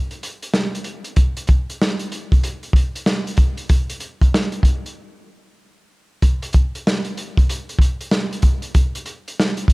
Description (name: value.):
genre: hip hop.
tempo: 95 BPM.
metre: 4/4.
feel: swing 65% on 16ths.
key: none.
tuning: none.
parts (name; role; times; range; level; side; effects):
crunchy breakbeat drum kit; drums; 0.1-9.7 s; hi-hat, kick drum, snare drum; -16 LUFS; equal; none.
room: little or no reverb.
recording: none.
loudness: -17 LUFS.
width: side -25 dB against mid.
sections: 0.0-9.7 A section.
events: break 5.0-6.2.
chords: none.